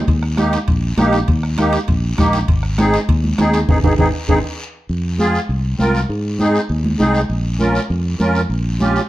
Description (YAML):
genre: latin, cumbia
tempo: 199 BPM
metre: 4/4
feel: straight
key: Ab major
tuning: A4 = 440 Hz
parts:
  - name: fingered electric bass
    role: bass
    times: 0.1-9.0 s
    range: Ab1 to Ab2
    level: -19 LUFS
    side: equal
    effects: none
  - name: bombo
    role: percussion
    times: 0.1-4.4 s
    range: none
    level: -18 LUFS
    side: left 1 dB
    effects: none
  - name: guiro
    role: percussion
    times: 0.1-9.1 s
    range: none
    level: -33 LUFS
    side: left 3 dB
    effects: none
  - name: timbales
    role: percussion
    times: 0.1-4.4 s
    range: none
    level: -26 LUFS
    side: right 6 dB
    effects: none
  - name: musette accordion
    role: accompaniment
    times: 0.4-9.0 s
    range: Bb3 to Bb4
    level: -18 LUFS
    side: right 1 dB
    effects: none
  - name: congas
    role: percussion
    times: 0.4-9.0 s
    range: none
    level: -21 LUFS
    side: right 1 dB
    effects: none
room: light reverb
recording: dark, warm production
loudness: -14 LUFS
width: side -15 dB against mid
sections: 0.0-4.9 A section; 4.9-9.1 B section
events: band accent 3.7-4.9; drum fill 4.0-4.9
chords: 0.1 Eb; 2.5 Ab; 4.9 Fm; 6.1 Ab; 7.3 Bbm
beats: | 0.07 0.38 0.68 0.98 | 1.28 1.58 1.88 2.18 | 2.48 2.78 3.08 3.38 | 3.69 3.98 4.29 4.59 | 4.89 5.19 5.49 5.79 | 6.09 6.39 6.70 7.00 | 7.30 7.60 7.90 8.20 | 8.50 8.80